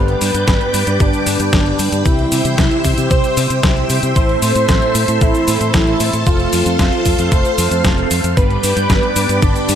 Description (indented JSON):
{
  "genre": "italo disco",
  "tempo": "114 BPM",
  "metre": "4/4",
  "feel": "straight",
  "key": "unclear",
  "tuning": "A4 = 440 Hz",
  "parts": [
    { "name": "wide unison lead", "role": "melody", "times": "0.0-9.8 s", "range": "D4 to C5", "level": "-19 LUFS", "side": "equal", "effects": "cassette tape, digital delay" },
    { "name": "string machine, full ensemble", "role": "sustained chords", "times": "0.0-9.8 s", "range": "A4 to E6", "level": "-20 LUFS", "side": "equal", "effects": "ensemble chorus" },
    { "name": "mellow synth brass", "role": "stabs", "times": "0.0-9.8 s", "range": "G2 to A4", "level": "-23 LUFS", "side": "right 3 dB", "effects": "chorus, cassette tape" },
    { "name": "fingered electric bass", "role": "bass", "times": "0.0-9.8 s", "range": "F1 to C3", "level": "-19 LUFS", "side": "equal", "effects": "none" },
    { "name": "clean 12-bit digital drum machine", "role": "drums", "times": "0.1-9.8 s", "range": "cabasa, hi-hat, snare drum", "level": "-20 LUFS", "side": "left 1 dB", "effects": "overdrive" },
    { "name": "electronic kick drum", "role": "drums", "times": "0.5-9.5 s", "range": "none", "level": "-16 LUFS", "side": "equal", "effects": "overdrive" }
  ],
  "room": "light reverb",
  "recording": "none",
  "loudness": "-12 LUFS",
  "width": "side -9 dB against mid",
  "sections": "0.0-9.8 A section",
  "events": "none",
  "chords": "0.0 G; 2.1 C; 4.2 Am; 6.3 F; 8.4 G"
}